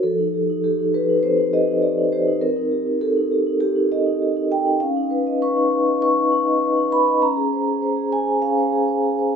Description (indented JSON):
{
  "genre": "classical, contemporary piece for solo vibraphone",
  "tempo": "100 BPM",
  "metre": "4/4",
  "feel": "straight",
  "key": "unclear",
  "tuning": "A4 = 440 Hz",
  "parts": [
    { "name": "vibraphone with soft mallets", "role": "solo", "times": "0.0-9.4 s", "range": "F3 to Db6", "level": "-17 LUFS", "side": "equal", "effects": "none" }
  ],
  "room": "moderate recital hall reverb, RT60 1.6 s",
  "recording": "recorded in a church or concert hall, faint mains hum",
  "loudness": "-17 LUFS",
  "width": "side -6 dB against mid",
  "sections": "0.0-9.4 A section",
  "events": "none",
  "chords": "0.0 F9; 2.4 Cm7; 4.8 Db9; 7.2 Bbm9/Db"
}